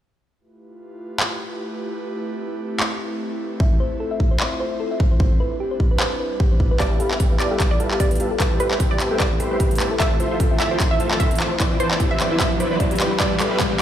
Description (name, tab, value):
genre	future bass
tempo	150 BPM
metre	4/4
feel	swing 55% on 16ths, half-time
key	unclear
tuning	A4 = 440 Hz
part	airy breathy pad	sustained chords	0.7-13.8 s	G3 to C5	-30 LUFS	equal	chorus, sidechain pumping
part	big-room dance drum kit	drums	1.2-13.7 s	handclaps, hi-hat	-25 LUFS	equal	studio reverb
part	thumb-piano-like synth pluck	arpeggios	3.6-13.7 s	G4 to B5	-28 LUFS	left 2 dB	chorus, sidechain pumping, digital delay
part	electronic kick drum	drums	3.6-13.7 s	none	-20 LUFS	equal	studio reverb
part	wide unison pluck	melody	6.8-13.4 s	B4 to E5	-28 LUFS	right 2 dB	sidechain pumping, ping-pong delay
part	dense compressed supersaw	riff	6.8-13.8 s	E4 to C6	-24 LUFS	equal	sidechain pumping, low-pass filter, digital delay
part	riser	sound effects	8.3-13.8 s	none	-29 LUFS	equal	none
room	light reverb, digital ambience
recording	played on a big sound system in a bare room, large studio reverb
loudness	-18 LUFS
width	side -10 dB against mid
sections	0.4-6.8 A section; 6.8-13.8 B section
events	build-up 6.8-13.8; drum fill 6.8-13.8; filter sweep on supersaw synth 6.8-13.8; filter sweep 6.8-13.8; riser 8.3-13.8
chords	0.4 G13; 2.0 Am9; 3.6 Fmaj7/A; 5.2 Cmaj9; 6.8 G13; 8.4 Am9; 10.0 Fmaj7; 11.6 Cmaj9; 13.2 G13